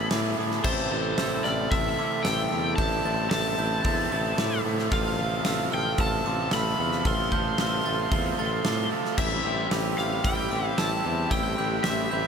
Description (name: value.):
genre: post-rock.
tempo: 113 BPM.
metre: 4/4.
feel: straight.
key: unclear.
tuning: A4 = 441 Hz.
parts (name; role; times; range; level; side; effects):
overdriven slide guitar; melody; 0.0-12.3 s; C5 to C6; -30 LUFS; left 4 dB; digital delay.
glockenspiel with brass mallets; arpeggios; 0.0-12.3 s; D6 to A6; -36 LUFS; right 6 dB; digital delay.
raw garage guitar; riff; 0.0-12.3 s; C3 to A4; -28 LUFS; right 2 dB; overdrive, spring reverb.
mellow tuba; bass; 0.0-12.3 s; A1 to A2; -31 LUFS; equal; none.
big rock drum kit; drums; 0.1-12.0 s; crash cymbal, hi-hat, kick drum, snare drum; -30 LUFS; equal; none.
pedal steel guitar; sustained chords; 0.6-12.3 s; C3 to F4; -38 LUFS; left 2 dB; none.
room: small room ambience.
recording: none.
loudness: -23 LUFS.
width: side -6 dB against mid.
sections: 0.0-12.3 A section.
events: none.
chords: 0.0 E/A; 0.7 Cadd9/A.